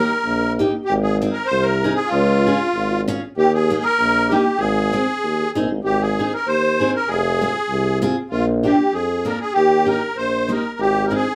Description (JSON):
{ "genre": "alpine folk, alpine dance band", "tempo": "97 BPM", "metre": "2/4", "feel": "swing 54% on 8ths", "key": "Ab major", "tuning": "A4 = 441 Hz", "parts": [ { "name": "musette accordion", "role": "melody", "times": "0.0-11.3 s", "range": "F4 to C5", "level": "-22 LUFS", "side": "equal", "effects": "none" }, { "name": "picked steel-string acoustic guitar", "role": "accompaniment", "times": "0.0-11.2 s", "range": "Bb3 to Ab4", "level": "-24 LUFS", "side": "equal", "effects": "none" }, { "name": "clear tuba", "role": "bass", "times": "0.0-11.2 s", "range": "F1 to F2", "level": "-23 LUFS", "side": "equal", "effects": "none" } ], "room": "wet studio reverb, RT60 0.5 s", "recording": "band playing live in one room", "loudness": "-19 LUFS", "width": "mono", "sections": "0.0-5.8 A section; 5.8-11.3 A section", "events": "none", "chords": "0.0 Eb; 0.9 Ab; 2.1 Db; 3.4 Eb; 4.6 Ab; 7.1 Fm; 8.3 Bb; 9.5 Eb; 10.8 Ab", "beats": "0.24 | 0.87 1.50 | 2.12 2.74 | 3.36 3.97 | 4.59 5.21 | 5.84 6.46 | 7.08 7.70 | 8.31 8.92 | 9.54 10.16 | 10.78" }